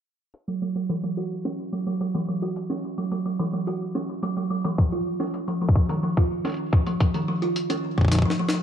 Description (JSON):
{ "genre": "IDM", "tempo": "108 BPM", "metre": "4/4", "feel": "straight", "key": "unclear", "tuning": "A4 = 440 Hz", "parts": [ { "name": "jungle sampler-style drum kit", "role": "drums", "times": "0.3-8.6 s", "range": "hi-hat, snare drum", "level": "-30 LUFS", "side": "left 2 dB", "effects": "none" }, { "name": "kalimba", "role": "arpeggios", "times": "0.5-8.6 s", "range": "D#3 to F#4", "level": "-25 LUFS", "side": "right 1 dB", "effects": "vintage 12-bit sampler grit, low-pass filter, ping-pong delay" }, { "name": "electronic kick drum", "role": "drums", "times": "4.8-8.3 s", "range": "none", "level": "-20 LUFS", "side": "left 1 dB", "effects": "none" } ], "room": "light reverb, digital ambience", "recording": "low-pass filter", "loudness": "-23 LUFS", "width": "side -9 dB against mid", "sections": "0.3-8.6 A section", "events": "filter sweep on kalimba 0.3-8.6; filter sweep 0.3-8.6; drum fill 8.1-8.6", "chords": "none", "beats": "| 0.34 0.89 1.45 2.00 | 2.56 3.12 3.67 4.23 | 4.78 5.34 5.89 6.45 | 7.00 7.56 8.12" }